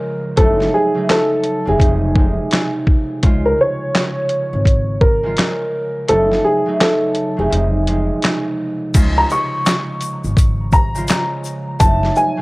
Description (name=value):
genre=hip hop, boom-bap hip-hop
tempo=84 BPM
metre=4/4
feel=swing 62% on 16ths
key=Db major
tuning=A4 = 440 Hz
part: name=dark upright piano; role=melody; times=0.0-12.4 s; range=Ab4 to Db6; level=-18 LUFS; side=equal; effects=high-pass filter, low-pass filter, cassette tape
part: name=concert harp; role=accompaniment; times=0.0-12.4 s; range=C3 to F4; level=-22 LUFS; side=right 1 dB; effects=high-pass filter, low-pass filter, cassette tape
part: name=upright bass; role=bass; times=0.4-12.1 s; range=F1 to Db2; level=-20 LUFS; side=equal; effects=none
part: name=boom bap sampler-style drum kit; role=drums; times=0.4-12.4 s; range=crash cymbal, handclaps, hi-hat, kick drum, shaker, snare drum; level=-15 LUFS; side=equal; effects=cassette tape
part: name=tube shaker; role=percussion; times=8.9-12.4 s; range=none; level=-32 LUFS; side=left 7 dB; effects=none
room=little or no reverb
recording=home recording on cassette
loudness=-14 LUFS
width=side -22 dB against mid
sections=0.0-8.9 A section; 8.9-12.4 B section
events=kick muted 6.1-8.9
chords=0.4 Gbm6; 1.8 Fm7; 3.2 Db; 6.1 Gbm6; 7.5 Fm7; 8.9 Db; 11.8 Gbm6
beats=| 0.38 1.09 1.80 2.52 | 3.23 3.95 4.66 5.38 | 6.09 6.80 7.52 8.23 | 8.95 9.66 10.38 11.09 | 11.80